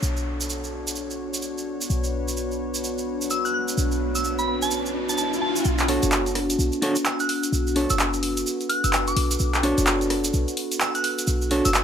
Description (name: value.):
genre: UK garage, two-step garage.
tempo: 128 BPM.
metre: 4/4.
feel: swing 62% on 16ths.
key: B minor.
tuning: A4 = 436 Hz.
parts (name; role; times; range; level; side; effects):
warm analog pad; sustained chords; 0.0-11.8 s; D4 to F#5; -34 LUFS; left 4 dB; chorus.
short 808-style bass; bass; 0.0-11.8 s; F#1 to B1; -27 LUFS; equal; none.
tube shaker; percussion; 0.0-11.8 s; none; -30 LUFS; right 4 dB; none.
downlifter and riser; sound effects; 0.0-5.6 s; none; -34 LUFS; equal; none.
warbly tape-like pad; texture; 0.0-11.8 s; B3 to F#4; -28 LUFS; equal; chorus, built-in reverb.
soft synth bell; melody; 3.3-11.8 s; A5 to F#6; -27 LUFS; right 1 dB; chorus, phaser, tape echo.
punchy analog drum machine; drums; 5.8-11.8 s; handclaps, hi-hat, rim click; -25 LUFS; equal; low-pass filter on hats, low-pass filter on snare, low-pass filter on room.
semi-hollow electric guitar; stabs; 5.9-11.7 s; D4 to C#5; -25 LUFS; right 1 dB; tape echo.
room: moderate plate reverb, RT60 1.9 s.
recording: none.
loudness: -21 LUFS.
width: side -8 dB against mid.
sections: 0.0-5.7 A section; 5.7-11.8 B section.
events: riser 3.5-5.7; build-up 5.7-11.8.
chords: 0.0 Bm9.